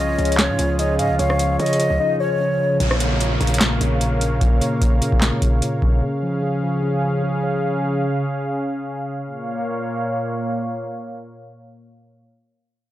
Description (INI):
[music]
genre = hip hop, trap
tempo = 149 BPM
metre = 4/4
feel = half-time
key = Bb minor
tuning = A4 = 441 Hz
[part]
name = breathy hollow jazz flute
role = melody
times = 0.0-2.8 s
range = Db5 to F5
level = -24 LUFS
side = equal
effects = tape echo
[part]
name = soft octave-layered synth lead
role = second line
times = 0.0-2.8 s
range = Db5 to F5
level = -24 LUFS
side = left 1 dB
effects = chorus, phaser, tape echo
[part]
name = mellow tine electric piano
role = accompaniment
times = 0.0-8.4 s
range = Bb2 to Db5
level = -23 LUFS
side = equal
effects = low-pass filter
[part]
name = warm analog pad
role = sustained chords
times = 0.0-12.2 s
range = Bb2 to F5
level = -25 LUFS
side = equal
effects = chorus, low-pass filter
[part]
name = hard-hitting 808-style bass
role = bass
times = 0.0-4.4 s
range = Bb1 to Db3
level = -22 LUFS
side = equal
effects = none
[part]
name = booming analog drum machine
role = drums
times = 0.2-6.0 s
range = handclaps, hi-hat, kick drum, rim click, snare drum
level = -19 LUFS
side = equal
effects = overdrive
[part]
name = downlifter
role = sound effects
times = 2.8-6.0 s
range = none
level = -29 LUFS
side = equal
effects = none
[sound]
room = digital ambience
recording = dry, gritty hardware recording, transformer saturation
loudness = -18 LUFS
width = side -14 dB against mid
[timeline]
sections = 0.0-2.8 A section; 2.8-9.2 B section; 9.2-12.5 C section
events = drums muted 2.0-2.8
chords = 0.0 Db; 2.8 Bbm; 6.0 Db; 9.2 Bbm